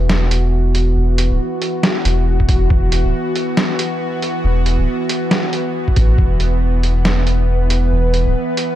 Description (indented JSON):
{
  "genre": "deep dubstep",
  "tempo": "138 BPM",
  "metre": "4/4",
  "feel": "swing 60% on 16ths, half-time",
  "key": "unclear",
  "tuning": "A4 = 442 Hz",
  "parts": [
    { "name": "bowed-like drone", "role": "sustained chords", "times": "0.0-8.8 s", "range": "E3 to B4", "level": "-20 LUFS", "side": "equal", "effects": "built-in reverb" },
    { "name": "soft dub sub bass", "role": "bass", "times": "0.0-8.3 s", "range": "D1 to A1", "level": "-15 LUFS", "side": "equal", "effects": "tube saturation" },
    { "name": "trip hop sampler-style drum kit", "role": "drums", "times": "0.1-8.7 s", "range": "hi-hat, snare drum", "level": "-19 LUFS", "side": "right 1 dB", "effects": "none" },
    { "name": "electronic kick drum", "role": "drums", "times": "2.4-2.8, 5.9-6.3 s", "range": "none", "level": "-15 LUFS", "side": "equal", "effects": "none" }
  ],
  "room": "digital ambience",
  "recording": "dark, warm production",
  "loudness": "-14 LUFS",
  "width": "side -13 dB against mid",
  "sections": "0.0-8.8 A section",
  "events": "none",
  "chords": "0.0 E5"
}